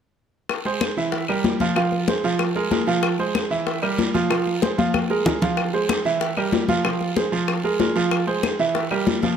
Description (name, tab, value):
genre	latin, salsa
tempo	189 BPM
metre	4/4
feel	straight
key	F minor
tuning	A4 = 440 Hz
part	bongos	percussion	0.5-9.4 s	none	-27 LUFS	left 7 dB	none
part	claves	percussion	0.5-9.1 s	none	-32 LUFS	left 8 dB	none
part	congas	percussion	0.5-9.4 s	none	-24 LUFS	left 5 dB	none
part	guiro	percussion	0.5-9.4 s	none	-33 LUFS	right 3 dB	none
part	bright concert grand piano	accompaniment	0.7-9.4 s	E3 to F5	-22 LUFS	right 4 dB	none
room	light reverb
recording	close, detailed microphones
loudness	-19 LUFS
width	side -8 dB against mid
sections	0.5-9.4 A section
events	drum fill 4.8-5.6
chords	0.5 Eaug; 1.1 Edim; 1.8 Fm; 2.4 Bb5; 3.0 Fm; 3.7 Edim; 4.3 Fm; 4.9 Bb5; 5.6 Fm; 6.2 Edim; 6.8 Fm; 7.5 Bb5; 8.1 Fm; 8.8 Edim